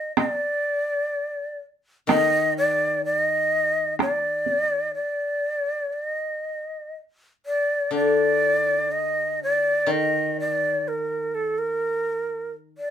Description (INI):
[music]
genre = japanese traditional, Japanese chamber music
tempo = 62 BPM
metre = 2/4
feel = rubato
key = unclear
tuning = A4 = 438 Hz
[part]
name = breathy shakuhachi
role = melody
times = 0.0-12.9 s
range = A4 to Eb5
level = -22 LUFS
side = equal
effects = none
[part]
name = taiko ensemble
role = percussion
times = 0.2-4.7 s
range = none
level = -22 LUFS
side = right 4 dB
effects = none
[part]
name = koto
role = accompaniment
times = 2.1-4.9, 7.9-12.8 s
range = D3 to Eb3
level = -28 LUFS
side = left 3 dB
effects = none
[sound]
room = light reverb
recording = minimal, uncompressed stereo recording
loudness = -21 LUFS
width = side -9 dB against mid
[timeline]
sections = 0.0-5.9 A section; 5.9-12.9 B section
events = none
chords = none